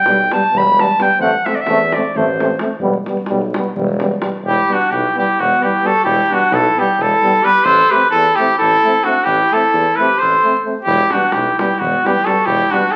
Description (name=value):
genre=balkan folk, Balkan brass band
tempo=261 BPM (eighths)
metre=7/8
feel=straight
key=E minor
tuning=A4 = 439 Hz
part: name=clear clarinet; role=second line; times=0.0-13.0 s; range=B3 to B5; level=-21 LUFS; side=equal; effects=none
part: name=warm tuba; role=bass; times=0.0-12.6 s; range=E1 to E2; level=-26 LUFS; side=equal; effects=none
part: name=clear euphonium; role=accompaniment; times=0.1-12.8 s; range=B3 to C4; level=-28 LUFS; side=equal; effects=none
part: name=warm trombone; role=accompaniment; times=0.1-12.8 s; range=G3 to A3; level=-24 LUFS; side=equal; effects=none
part: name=davul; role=percussion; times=0.1-4.4, 10.9-12.9 s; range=none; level=-29 LUFS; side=equal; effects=none
part: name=clear trumpet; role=melody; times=4.5-13.0 s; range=F#4 to C5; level=-15 LUFS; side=equal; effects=none
room=wet large studio reverb, RT60 1.2 s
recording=very old 78 rpm record, vinyl crackle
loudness=-15 LUFS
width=mono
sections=0.0-4.4 A section; 4.4-13.0 B section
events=clarinet solo 0.0-4.4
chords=0.0 Em; 1.2 Am; 2.8 Em; 7.6 Am; 10.9 Em